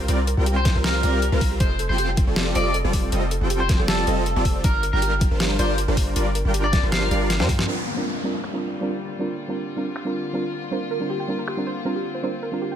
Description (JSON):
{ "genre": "future bass", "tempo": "158 BPM", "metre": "4/4", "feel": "half-time", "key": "unclear", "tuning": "A4 = 440 Hz", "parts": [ { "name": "soft round pluck", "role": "arpeggios", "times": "0.0-7.6, 10.7-12.7 s", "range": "G4 to Bb5", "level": "-32 LUFS", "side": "right 4 dB", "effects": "wide subtle chorus, sidechain pumping, ping-pong delay" }, { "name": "supersaw chords", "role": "riff", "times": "0.0-7.7 s", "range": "G3 to G5", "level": "-25 LUFS", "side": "equal", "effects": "cassette tape, sidechain pumping, low-pass filter" }, { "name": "long sustained 808-style bass", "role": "bass", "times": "0.0-7.7 s", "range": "F1 to G2", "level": "-24 LUFS", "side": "equal", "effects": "sidechain pumping" }, { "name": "dubstep drum kit", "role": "drums", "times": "0.1-11.6 s", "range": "finger snaps, hi-hat, snare drum", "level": "-26 LUFS", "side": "left 1 dB", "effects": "overdrive, low-pass filter on hats, low-pass filter on snare" }, { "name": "electric guitar at the edge of break-up", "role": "melody", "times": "0.6-7.6 s", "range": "A4 to F5", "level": "-27 LUFS", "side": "left 1 dB", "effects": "lush chorus, sidechain pumping, ping-pong delay" }, { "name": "electronic kick drum", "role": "drums", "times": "0.7-7.6 s", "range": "none", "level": "-21 LUFS", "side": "equal", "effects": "overdrive" }, { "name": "soft round pluck", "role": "accompaniment", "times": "7.7-12.8 s", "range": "G3 to Bb4", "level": "-27 LUFS", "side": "right 2 dB", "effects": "chorus, sidechain pumping, ping-pong delay" }, { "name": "warm studio string section", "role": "sustained chords", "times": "7.7-12.8 s", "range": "D3 to F4", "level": "-32 LUFS", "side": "left 3 dB", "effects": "vintage 12-bit sampler grit, sidechain pumping" }, { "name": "downlifter", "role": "sound effects", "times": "7.7-10.7 s", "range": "none", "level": "-31 LUFS", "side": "left 2 dB", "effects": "none" } ], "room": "light reverb, digital ambience", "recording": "none", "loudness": "-20 LUFS", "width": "side -9 dB against mid", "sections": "0.0-7.7 A section; 7.7-12.8 B section", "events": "drop 0.0-7.7; drum fill 7.3-7.7; band accent 7.6", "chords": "0.0 C9sus4; 1.6 F9; 4.6 Gm7; 7.7 C9sus4", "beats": "| 0.09 0.47 0.84 1.22 | 1.60 1.98 2.36 2.74 | 3.12 3.50 3.88 4.26 | 4.64 5.02 5.40 5.78 | 6.16 6.54 6.92 7.30 | 7.68 8.06 8.44 8.82 | 9.20 9.58 9.96 10.34 | 10.72 11.10 11.48 11.86 | 12.24 12.62" }